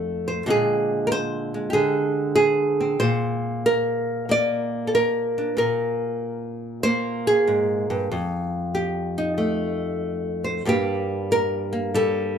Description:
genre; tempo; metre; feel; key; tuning
solo jazz; 94 BPM; 4/4; swing 67% on 8ths; unclear; A4 = 440 Hz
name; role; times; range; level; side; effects
nylon-string guitar; solo; 0.0-12.4 s; F2 to D5; -21 LUFS; equal; none
room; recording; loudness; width
wet studio ambience, RT60 0.4 s; heard from further back in the room; -21 LUFS; side -8 dB against mid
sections
0.0-12.4 A section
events
none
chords
0.5 Bb9; 8.1 F9; 10.7 Gm

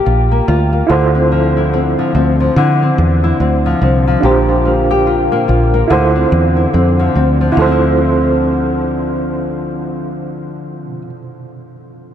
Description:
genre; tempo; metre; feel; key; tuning
indie pop, bedroom pop; 72 BPM; 4/4; swing 60% on 16ths; D minor; A4 = 439 Hz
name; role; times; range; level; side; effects
nylon-string guitar; accompaniment; 0.0-11.2 s; Bb2 to G4; -15 LUFS; left 3 dB; wide subtle chorus, vibrato effect
fingered electric bass; bass; 0.1-10.9 s; Bb1 to D3; -14 LUFS; right 1 dB; none
reed electric piano; accompaniment; 0.9-12.1 s; D4 to C5; -18 LUFS; right 4 dB; fast tremolo
room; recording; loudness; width
moderate huge ambient reverb, RT60 8.0 s; dreamy mix soaked in reverb; -11 LUFS; side -9 dB against mid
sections
0.0-7.6 A section; 7.6-10.9 B section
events
none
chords
0.0 Bb6; 0.9 Dm9; 4.2 Bb6; 5.9 Dm9

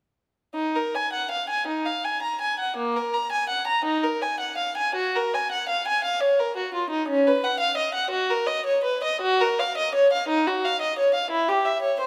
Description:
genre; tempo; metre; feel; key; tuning
classical, baroque-style suite movement for unaccompanied violin; 56 BPM (dotted quarters); 6/8; uneven beats, rubato; Eb minor; A4 = 442 Hz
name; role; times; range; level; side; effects
warm violin; solo; 0.5-12.1 s; Bb3 to Bb5; -24 LUFS; equal; none
room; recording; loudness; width
moderate scoring stage reverb, RT60 1.9 s; none; -24 LUFS; mono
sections
0.5-12.1 A section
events
none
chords
none

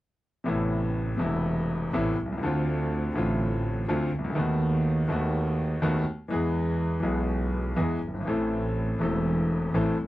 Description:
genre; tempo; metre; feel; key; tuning
tango; 123 BPM; 4/4; rubato; A harmonic minor; A4 = 440 Hz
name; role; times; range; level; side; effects
bright grand piano; accompaniment; 0.4-10.0 s; E1 to A4; -26 LUFS; left 1 dB; none
clear double bass; bass; 0.5-10.1 s; E1 to E2; -29 LUFS; right 2 dB; none
room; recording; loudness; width
light reverb; dry, close 1970s-style studio recording; -25 LUFS; side -16 dB against mid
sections
0.5-10.1 A section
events
none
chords
0.5 Amadd9; 2.4 Dm7; 4.4 B7/D#; 6.3 E; 8.3 Am

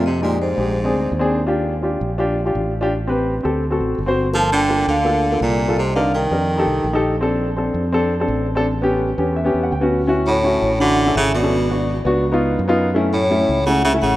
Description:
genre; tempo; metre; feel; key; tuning
jazz; 167 BPM; 4/4; straight; D major from 10.1 s; A4 = 439 Hz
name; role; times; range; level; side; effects
vibraphone with medium hard mallets; melody; 0.0-1.3, 4.4-7.0, 10.3-14.2 s; C5 to A5; -22 LUFS; left 1 dB; none
bright baritone saxophone; second line; 0.0-1.3, 4.3-7.0, 10.3-14.2 s; Ab2 to F3; -21 LUFS; right 2 dB; none
warm upright piano; accompaniment; 0.0-14.2 s; Ab3 to G5; -19 LUFS; left 1 dB; none
fretless electric bass; bass; 0.0-14.2 s; G1 to F#2; -23 LUFS; equal; none
room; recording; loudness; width
moderate plate reverb, RT60 3.4 s; rough home demo mix; -16 LUFS; side -15 dB against mid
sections
0.0-10.1 A section; 10.1-14.2 B section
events
upright piano fill 9.0-10.1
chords
0.0 Fm7; 0.8 Bb7; 1.5 Ebmaj7; 2.9 Am7; 3.6 D7; 4.3 Gm7; 5.8 Cm7; 6.5 F7; 7.2 Bbmaj9; 8.7 A7; 10.1 Dmaj7; 11.5 G#m7b5; 12.2 C#7; 13.0 F#m7

